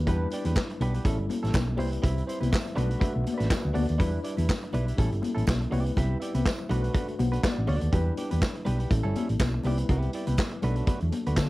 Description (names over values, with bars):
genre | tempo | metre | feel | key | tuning
disco | 122 BPM | 4/4 | swing 56% on 16ths | E minor | A4 = 440 Hz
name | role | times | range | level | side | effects
tine electric piano | accompaniment | 0.0-11.5 s | E3 to F#5 | -35 LUFS | left 2 dB | overdrive, fast stereo tremolo, tube saturation
hollow-body short-scale fingered electric bass | bass | 0.0-11.5 s | G1 to D3 | -27 LUFS | equal | none
direct-recorded clean electric guitar | accompaniment | 0.1-11.4 s | G3 to D5 | -36 LUFS | right 3 dB | none
vintage drum kit | drums | 0.1-11.5 s | handclaps, hi-hat, kick drum, snare drum | -29 LUFS | equal | cassette tape
congas | percussion | 0.1-11.5 s | none | -34 LUFS | left 4 dB | none
tambourine | percussion | 0.6-11.5 s | none | -47 LUFS | right 7 dB | none
room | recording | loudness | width
little or no reverb | home recording on cassette | -24 LUFS | side -19 dB against mid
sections
0.0-11.5 A section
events
tine electric piano fill 2.5-4.0, 6.9-7.9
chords
0.1 Em7; 1.0 A7; 1.8 Cmaj7; 2.8 Bm7; 4.0 Em7; 5.0 A7; 5.7 Cmaj7; 6.7 Bm7; 7.9 Em7; 8.9 A7; 9.6 Cmaj7; 10.6 Bm7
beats
| 0.06 0.55 1.04 1.54 | 2.03 2.52 3.01 3.50 | 3.99 4.49 4.98 5.47 | 5.96 6.45 6.94 7.43 | 7.93 8.42 8.91 9.40 | 9.89 10.38 10.88 11.37